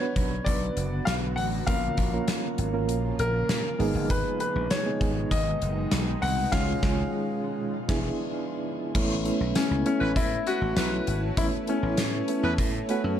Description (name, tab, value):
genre	1980s-style pop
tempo	99 BPM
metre	4/4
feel	straight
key	A major from 9.0 s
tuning	A4 = 440 Hz
part	clear grand piano	melody	0.0-12.6 s	C#4 to F#5	-30 LUFS	left 3 dB	tape echo
part	soft electric-piano-like synth keys	accompaniment	0.0-13.2 s	G#3 to B4	-30 LUFS	right 3 dB	chorus, tremolo
part	granular cloud pad	sustained chords	0.6-13.2 s	B2 to A5	-35 LUFS	left 1 dB	built-in reverb
part	slap bass	bass	0.2-13.2 s	E1 to A#2	-29 LUFS	equal	none
part	gated 80s drum kit	drums	0.2-13.0 s	crash cymbal, hi-hat, kick drum, snare drum, tambourine	-29 LUFS	equal	none
part	warm horn section	stabs	10.0-13.0 s	C#4 to B4	-34 LUFS	right 1 dB	none
room	moderate plate reverb, RT60 1.6 s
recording	dark, warm production, faint mains hum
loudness	-24 LUFS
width	side -10 dB against mid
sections	0.0-9.0 A section; 9.0-13.2 B section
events	band accent 6.5-9.0; synth keys fill 7.7-9.0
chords	0.0 Bm; 1.7 A#m; 3.8 G#m; 6.5 C#; 7.7 E7; 9.0 Aadd9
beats	0.47 1.07 | 1.68 2.28 2.89 3.50 | 4.10 4.71 5.31 5.92 | 6.53 7.13 7.74 8.34 | 8.95 9.56 10.16 10.77 | 11.38 11.98 12.59 13.19